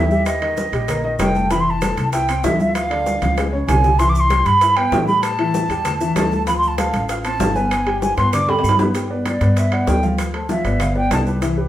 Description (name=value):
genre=Afro-Cuban jazz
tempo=194 BPM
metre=4/4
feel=straight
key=unclear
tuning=A4 = 442 Hz
part: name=hollow concert flute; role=melody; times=0.0-11.2 s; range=D5 to D6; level=-19 LUFS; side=right 1 dB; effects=none
part: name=warm baby grand piano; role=accompaniment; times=0.0-11.7 s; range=Db3 to F6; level=-23 LUFS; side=left 2 dB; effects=none
part: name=upright bass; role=bass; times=0.0-11.7 s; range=F1 to A2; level=-21 LUFS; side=equal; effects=none
part: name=congas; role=percussion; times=0.1-11.7 s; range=none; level=-26 LUFS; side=equal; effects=none
part: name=maracas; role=percussion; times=0.1-11.6 s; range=none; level=-37 LUFS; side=right 4 dB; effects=none
part: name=bongos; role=percussion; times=0.3-11.6 s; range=none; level=-29 LUFS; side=left 5 dB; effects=none
part: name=claves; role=percussion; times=0.3-11.3 s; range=none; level=-36 LUFS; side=left 2 dB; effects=none
part: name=timbales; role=percussion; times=0.3-11.6 s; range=none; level=-26 LUFS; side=right 3 dB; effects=none
room=wet large studio reverb, RT60 0.8 s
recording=band playing live in one room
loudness=-15 LUFS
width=side -12 dB against mid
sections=0.0-8.9 A section; 8.9-11.7 B section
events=drum fill 3.1-4.0, 8.2-8.9; flute solo 8.9-11.7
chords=0.3 Ebadd9; 1.5 Fmaj9; 2.8 Dm; 3.4 Db5; 4.0 Cmaj7; 5.2 A5; 6.5 Dm7; 7.7 G; 10.2 Dm7; 10.8 G